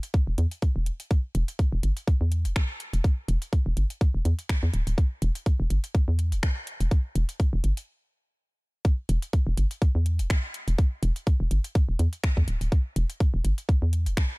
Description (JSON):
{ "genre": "minimal techno", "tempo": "124 BPM", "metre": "4/4", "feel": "swing 55% on 16ths", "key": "E minor", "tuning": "A4 = 440 Hz", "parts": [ { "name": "booming analog drum machine", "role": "drums", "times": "0.0-14.3 s", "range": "finger snaps, hi-hat", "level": "-36 LUFS", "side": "equal", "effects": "none" }, { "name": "electronic kick drum", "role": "drums", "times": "0.1-14.3 s", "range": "none", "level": "-22 LUFS", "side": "equal", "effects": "none" }, { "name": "hollow knocking FM bass", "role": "bass", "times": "0.3-14.1 s", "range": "D1 to E2", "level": "-24 LUFS", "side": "equal", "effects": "sidechain pumping" } ], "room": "little or no reverb", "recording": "dark, warm production", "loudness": "-23 LUFS", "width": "side -27 dB against mid", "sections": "0.0-8.8 A section; 8.8-14.4 B section", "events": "stop 7.9-8.8; drop 8.8-14.4", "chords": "none", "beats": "0.14 0.62 | 1.11 1.59 2.08 2.56 | 3.04 3.53 4.01 4.49 | 4.98 5.46 5.95 6.43 | 6.91 7.40 7.88 8.37 | 8.85 9.33 9.82 10.30 | 10.78 11.27 11.75 12.24 | 12.72 13.20 13.69 14.17" }